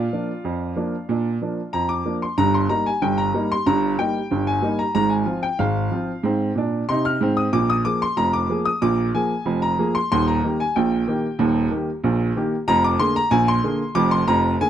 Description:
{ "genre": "ragtime piano", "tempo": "93 BPM", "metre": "2/4", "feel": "straight", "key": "Eb major", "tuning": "A4 = 441 Hz", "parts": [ { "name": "clear baby grand piano", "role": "solo", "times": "0.0-14.7 s", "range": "Eb1 to F6", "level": "-19 LUFS", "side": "right 1 dB", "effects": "none" } ], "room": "studio reverb", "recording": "dry, close 1970s-style studio recording", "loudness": "-19 LUFS", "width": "side -10 dB against mid", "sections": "0.0-2.4 A section; 2.4-14.7 A section", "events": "none", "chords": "0.0 Bb; 2.4 Eb/G; 5.0 Fm/Ab; 7.5 Bb5; 10.1 Eb; 12.7 Bb7/F" }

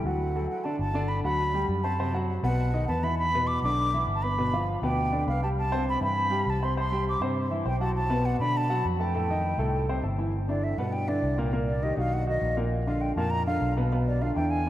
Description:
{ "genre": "Afro-Cuban jazz", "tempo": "201 BPM", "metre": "4/4", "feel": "straight", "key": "G major", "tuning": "A4 = 440 Hz", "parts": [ { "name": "mellow concert flute", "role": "melody", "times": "0.0-14.7 s", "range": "D5 to D6", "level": "-30 LUFS", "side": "equal", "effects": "none" }, { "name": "warm grand piano", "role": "accompaniment", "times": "0.0-14.7 s", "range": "A2 to C6", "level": "-29 LUFS", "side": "equal", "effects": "none" }, { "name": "fingered electric bass", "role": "bass", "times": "0.0-14.7 s", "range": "G1 to B2", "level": "-29 LUFS", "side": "equal", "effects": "none" } ], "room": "wet cathedral reverb, RT60 5.7 s", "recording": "in a vast, echoing space", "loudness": "-24 LUFS", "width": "side -13 dB against mid", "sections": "0.8-10.3 A section; 10.3-14.7 B section", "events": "flute solo 10.3-14.7", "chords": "0.2 D; 0.8 Gmaj9; 2.0 F#dim; 2.6 B; 3.2 Em7; 4.4 G7; 5.6 C6; 6.8 C; 7.9 Bm7; 9.1 F9; 10.3 G6; 11.5 Cm7; 12.1 B; 12.7 Bb; 13.9 Bdim" }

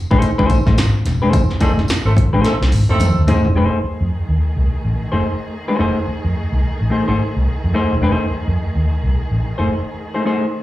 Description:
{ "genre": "funk", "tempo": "108 BPM", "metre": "4/4", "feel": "swing 60% on 16ths", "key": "unclear", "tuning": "A4 = 444 Hz", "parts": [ { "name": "semi-hollow electric guitar", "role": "accompaniment", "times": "0.1-10.5 s", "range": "A3 to D5", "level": "-18 LUFS", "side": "left 2 dB", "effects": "slapback echo" }, { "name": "vintage muted fingered electric bass", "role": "bass", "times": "0.1-9.7 s", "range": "E1 to F2", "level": "-17 LUFS", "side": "equal", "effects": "none" }, { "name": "punchy analog drum machine", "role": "drums", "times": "0.1-3.6 s", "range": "hi-hat, kick drum, snare drum, toms", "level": "-17 LUFS", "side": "equal", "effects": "none" }, { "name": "tambourine", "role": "percussion", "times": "0.2-3.4 s", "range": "none", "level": "-37 LUFS", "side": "left 3 dB", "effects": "none" }, { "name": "warm horn section", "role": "second line", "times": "1.6-3.3 s", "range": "Eb3 to A4", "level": "-22 LUFS", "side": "right 2 dB", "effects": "slapback echo" }, { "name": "rich symphonic string section", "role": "sustained chords", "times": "3.6-10.6 s", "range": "Eb3 to G#4", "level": "-28 LUFS", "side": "right 2 dB", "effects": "none" } ], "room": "light reverb", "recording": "live gig heard through the venue's PA, club reverb, small room ambience", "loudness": "-15 LUFS", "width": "side -15 dB against mid", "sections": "0.0-3.6 A section; 3.6-10.6 B section", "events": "band accent 1.3-3.6; drum fill 2.4-3.6", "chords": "0.0 F7#9" }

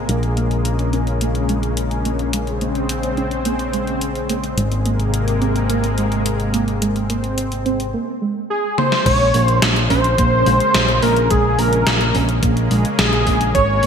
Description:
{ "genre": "synthwave", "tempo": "107 BPM", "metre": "4/4", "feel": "straight", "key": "Bb minor", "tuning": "A4 = 440 Hz", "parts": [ { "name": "analog string pad", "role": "sustained chords", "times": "0.0-13.9 s", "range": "C3 to C4", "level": "-23 LUFS", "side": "left 2 dB", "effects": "ensemble chorus, sidechain pumping" }, { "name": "soft round pluck", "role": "arpeggios", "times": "0.0-13.9 s", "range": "Ab3 to Db4", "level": "-25 LUFS", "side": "right 6 dB", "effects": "wide subtle chorus, cassette tape, digital delay" }, { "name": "picked electric bass with an envelope filter", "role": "bass", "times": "0.0-13.9 s", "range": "Ab1 to Bb1", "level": "-20 LUFS", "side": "equal", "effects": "tube saturation" }, { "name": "gated 80s digital drum machine", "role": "drums", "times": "0.1-13.9 s", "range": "crash cymbal, hi-hat, snare drum, toms", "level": "-21 LUFS", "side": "left 1 dB", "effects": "gated reverb, gated reverb snare, overdrive" }, { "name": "wide unison lead", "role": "melody", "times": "8.5-13.9 s", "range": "Ab4 to Db5", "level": "-18 LUFS", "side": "equal", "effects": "ping-pong delay" }, { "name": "FM electric piano with soft pad layer", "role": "second line", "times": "9.1-13.9 s", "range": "Ab4 to Db5", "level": "-24 LUFS", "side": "right 1 dB", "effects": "none" }, { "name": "electronic kick drum", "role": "drums", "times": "9.1-13.7 s", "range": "none", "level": "-21 LUFS", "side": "equal", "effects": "none" } ], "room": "moderate lush hall reverb, RT60 2.0 s", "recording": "bright 1980s-style digital production", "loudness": "-15 LUFS", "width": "side -7 dB against mid", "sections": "0.0-9.1 A section; 9.1-13.9 B section", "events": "filter sweep on drum 0.0-9.1; filter sweep on synth arpeggio sound 0.0-9.1; drum fill 8.8", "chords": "0.1 Bbm7; 4.6 Abadd9; 9.1 Bbm7" }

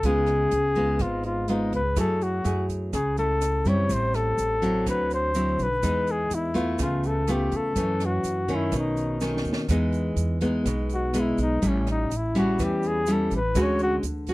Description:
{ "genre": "bossa nova", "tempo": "124 BPM", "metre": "4/4", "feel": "straight", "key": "E major", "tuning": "A4 = 441 Hz", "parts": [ { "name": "breathy flugelhorn", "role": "melody", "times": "0.0-14.0 s", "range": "C#4 to C#5", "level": "-26 LUFS", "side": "left 2 dB", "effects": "none" }, { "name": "nylon-string guitar", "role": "accompaniment", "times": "0.0-14.3 s", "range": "F#2 to G#4", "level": "-26 LUFS", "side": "equal", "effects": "none" }, { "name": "upright bass", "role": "bass", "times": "0.0-14.3 s", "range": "G#1 to F#2", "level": "-29 LUFS", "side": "right 1 dB", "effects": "none" }, { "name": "open jazz drum kit", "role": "drums", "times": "0.0-14.3 s", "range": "hi-hat, kick drum, rim click, snare drum", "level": "-34 LUFS", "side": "right 1 dB", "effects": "none" }, { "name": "tube shaker", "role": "percussion", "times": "2.0-14.3 s", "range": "none", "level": "-44 LUFS", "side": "right 14 dB", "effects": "none" } ], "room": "little or no reverb", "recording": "dry, close 1970s-style studio recording", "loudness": "-22 LUFS", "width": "side -19 dB against mid", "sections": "0.0-9.7 A section; 9.7-14.3 B section", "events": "drum fill 9.2-9.7; flugelhorn solo 9.7-14.3", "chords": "0.0 C#7; 2.0 F#m9; 3.9 Am7; 4.9 D9; 5.8 Emaj7; 6.8 C#7alt; 7.8 F#m7; 8.7 B9; 9.7 Emaj7; 11.6 A7; 13.6 Dmaj7#11" }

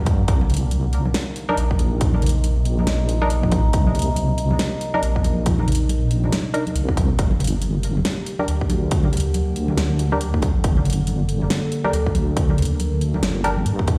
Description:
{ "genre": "deep dubstep", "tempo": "139 BPM", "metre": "4/4", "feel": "swing 60% on 16ths, half-time", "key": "G minor", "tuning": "A4 = 440 Hz", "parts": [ { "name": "overtone-sweeping drone", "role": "sustained chords", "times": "0.0-14.0 s", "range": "C3 to A4", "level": "-30 LUFS", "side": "equal", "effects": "chorus, built-in reverb" }, { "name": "deep soft wobble bass", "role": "bass", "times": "0.0-14.0 s", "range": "G1 to G2", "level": "-23 LUFS", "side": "equal", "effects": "chorus, tube saturation" }, { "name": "dubstep drum kit", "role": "drums", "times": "0.1-14.0 s", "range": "hi-hat, snare drum", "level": "-30 LUFS", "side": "equal", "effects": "small room ambience" }, { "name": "electronic kick drum", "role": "drums", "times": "0.1-14.0 s", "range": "none", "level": "-23 LUFS", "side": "equal", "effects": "small room ambience" }, { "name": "congas", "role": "percussion", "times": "0.1-14.0 s", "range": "none", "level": "-30 LUFS", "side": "equal", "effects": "dub echo" }, { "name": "filtered dub chord stab", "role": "stabs", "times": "1.5-13.6 s", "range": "D4 to Bb4", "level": "-30 LUFS", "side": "equal", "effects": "chorus, dub echo" } ], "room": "light reverb, digital ambience", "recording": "played on a big sound system in a bare room, stone room reverb", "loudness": "-20 LUFS", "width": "mono", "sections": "0.0-14.0 A section", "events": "none", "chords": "0.3 Cm7; 7.2 Gm" }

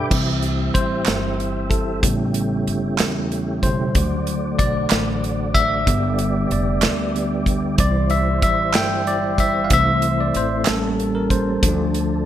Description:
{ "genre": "slow gospel", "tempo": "63 BPM (dotted quarters)", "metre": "6/8", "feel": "straight", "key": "C major", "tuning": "A4 = 440 Hz", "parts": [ { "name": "bell-like tine electric piano", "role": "accompaniment", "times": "0.0-12.3 s", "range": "G2 to B5", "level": "-21 LUFS", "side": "left 1 dB", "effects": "medium stereo tremolo" }, { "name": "tonewheel organ", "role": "sustained chords", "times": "0.0-12.3 s", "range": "F3 to E5", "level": "-27 LUFS", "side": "right 2 dB", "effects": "slow rotary speaker, chorus vibrato" }, { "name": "upright bass", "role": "bass", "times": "0.0-12.3 s", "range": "F1 to E2", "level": "-25 LUFS", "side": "equal", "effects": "none" }, { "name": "natural country drum kit", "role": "drums", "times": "0.1-12.1 s", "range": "crash cymbal, hi-hat, kick drum, snare drum", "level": "-22 LUFS", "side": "equal", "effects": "none" }, { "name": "group handclap", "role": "percussion", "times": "1.1-11.0 s", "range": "none", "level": "-27 LUFS", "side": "right 9 dB", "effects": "none" } ], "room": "moderate plate reverb, RT60 1.8 s, small room ambience", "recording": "bright 1980s-style digital production", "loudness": "-17 LUFS", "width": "side -11 dB against mid", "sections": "0.1-12.3 A section", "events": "tine electric piano solo 0.1-12.3", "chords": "0.1 C; 2.0 A7; 4.0 D; 5.9 G; 7.8 C; 9.7 Am/C; 10.7 A7b9; 11.6 Dm" }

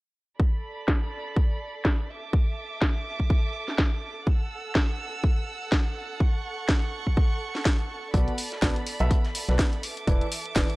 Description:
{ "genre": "piano house", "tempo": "124 BPM", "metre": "4/4", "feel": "swing 57% on 16ths", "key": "unclear", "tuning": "A4 = 440 Hz", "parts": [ { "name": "warm chamber violin section", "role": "sustained chords", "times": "0.4-10.8 s", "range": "A4 to E6", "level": "-36 LUFS", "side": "right 3 dB", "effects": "sidechain pumping, low-pass filter" }, { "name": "electronic kick drum", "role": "drums", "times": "0.4-10.7 s", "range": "none", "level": "-23 LUFS", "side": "equal", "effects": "none" }, { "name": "house drum kit", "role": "drums", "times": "0.9-10.8 s", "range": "hi-hat, snare drum", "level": "-28 LUFS", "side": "equal", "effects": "low-pass filter on snare, low-pass filter on hats, low-pass filter on room" }, { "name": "warm upright piano", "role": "riff", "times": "8.1-10.7 s", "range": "E3 to E5", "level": "-32 LUFS", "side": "right 1 dB", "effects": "sidechain pumping, tape echo" }, { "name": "organ-like FM bass", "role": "bass", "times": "8.1-10.6 s", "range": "E1 to B1", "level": "-26 LUFS", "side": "equal", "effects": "sidechain pumping" }, { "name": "modern studio drum kit", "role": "drums", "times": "8.1-10.8 s", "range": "hi-hat, snare drum", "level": "-41 LUFS", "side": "left 1 dB", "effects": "none" } ], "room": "studio reverb", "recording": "dry, gritty hardware recording, transformer saturation, cassette tape", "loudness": "-24 LUFS", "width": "side -22 dB against mid", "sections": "0.4-10.8 A section", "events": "filter sweep on drum 0.4-10.8", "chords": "0.4 Bm7; 2.1 E7sus4; 4.3 F#m7; 6.2 A6; 8.1 Bm7; 9.8 E7sus4" }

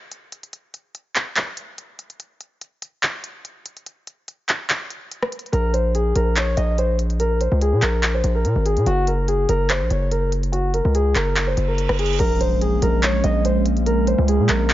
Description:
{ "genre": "hip hop, trap", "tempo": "144 BPM", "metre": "4/4", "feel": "half-time", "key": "Bb minor", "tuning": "A4 = 436 Hz", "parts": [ { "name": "trap drum kit", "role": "drums", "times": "0.1-14.7 s", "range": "crash cymbal, handclaps, hi-hat, rim click", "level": "-24 LUFS", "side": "equal", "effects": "overdrive" }, { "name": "warm concert grand piano", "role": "melody", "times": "5.5-14.7 s", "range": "Gb4 to Eb5", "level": "-22 LUFS", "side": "left 1 dB", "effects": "none" }, { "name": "distorted 808-style bass", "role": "bass", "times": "5.5-14.7 s", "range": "Gb1 to Bb2", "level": "-20 LUFS", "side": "equal", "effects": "distortion" }, { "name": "reverse cymbal and impact", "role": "sound effects", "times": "11.6-13.9 s", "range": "none", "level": "-32 LUFS", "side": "right 2 dB", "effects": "none" }, { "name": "warbly tape-like pad", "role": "sustained chords", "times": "12.4-14.7 s", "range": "Ab3 to Db4", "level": "-23 LUFS", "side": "right 3 dB", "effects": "chorus, built-in reverb" } ], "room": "digital ambience", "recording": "nothing above 7.5 kHz", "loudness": "-18 LUFS", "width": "side -14 dB against mid", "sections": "0.0-12.2 A section; 12.2-14.7 B section", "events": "break 0.0-5.5; reverse cymbal 11.6-12.2; impact 12.2-13.9", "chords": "0.0 N.C.; 8.9 Gb; 12.2 Bbm7" }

